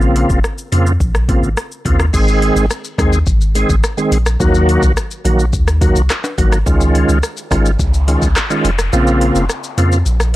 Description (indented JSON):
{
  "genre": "dancehall",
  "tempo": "106 BPM",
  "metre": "4/4",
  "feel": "straight",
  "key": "unclear",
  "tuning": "A4 = 440 Hz",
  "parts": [
    { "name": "bright tonewheel organ", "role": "accompaniment", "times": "0.0-10.0 s", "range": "Db3 to Ab4", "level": "-16 LUFS", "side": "right 1 dB", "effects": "chorus vibrato, slow rotary speaker" },
    { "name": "punchy sub bass", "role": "bass", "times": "0.0-10.4 s", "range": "F1 to F2", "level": "-14 LUFS", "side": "equal", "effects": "none" },
    { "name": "afro-pop drum kit", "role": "drums", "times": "0.0-10.3 s", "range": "crash cymbal, handclaps, hi-hat, kick drum, rim click, shaker", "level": "-17 LUFS", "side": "equal", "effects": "none" },
    { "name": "maracas and timbales", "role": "percussion", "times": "2.1-10.3 s", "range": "none", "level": "-28 LUFS", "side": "left 5 dB", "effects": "none" },
    { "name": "noise sweep", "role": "sound effects", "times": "7.3-10.4 s", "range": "none", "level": "-29 LUFS", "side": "left 2 dB", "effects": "none" }
  ],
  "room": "little or no reverb",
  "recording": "dry, gritty hardware recording",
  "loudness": "-12 LUFS",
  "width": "side -16 dB against mid",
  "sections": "0.0-2.1 A section; 2.1-10.4 B section",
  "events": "noise sweep 7.3-10.4; kick muted 8.9-10.4",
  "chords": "0.0 Bbmadd9; 2.1 Ab; 4.4 Ebm; 6.7 Dbadd9; 8.9 Bbmadd9",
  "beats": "0.44 1.00 1.57 | 2.14 2.70 3.27 3.83 | 4.40 4.97 5.53 6.10 | 6.67 7.23 7.80 8.36 | 8.93 9.50 10.06"
}